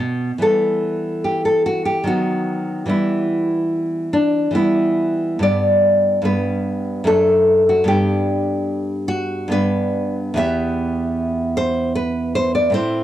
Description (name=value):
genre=classical, baroque-style dance for nylon-string guitar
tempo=66-78 BPM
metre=3/4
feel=rubato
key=E minor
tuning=A4 = 441 Hz
part: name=nylon-string guitar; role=solo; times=0.0-13.0 s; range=E2 to E5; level=-16 LUFS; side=equal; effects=cassette tape
room=light reverb, small room reverb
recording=home recording on cassette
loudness=-16 LUFS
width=side -12 dB against mid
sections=0.4-13.0 A section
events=none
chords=0.4 Em; 2.1 B/D#; 2.9 Em; 5.4 G; 7.1 D/F#; 7.9 G; 10.4 Em